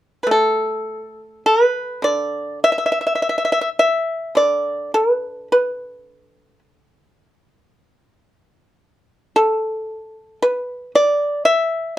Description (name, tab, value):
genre	chinese traditional, Chinese solo plucked strings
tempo	51-58 BPM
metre	4/4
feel	rubato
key	unclear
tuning	A4 = 440 Hz
part	pipa	solo	0.2-11.9 s	D3 to E5	-16 LUFS	equal	none
room	light reverb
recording	none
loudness	-17 LUFS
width	side -13 dB against mid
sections	0.0-12.0 A section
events	none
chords	none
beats	0.87 2.04 3.21 | 4.37 5.52 6.63 7.73 | 8.82 9.89 10.95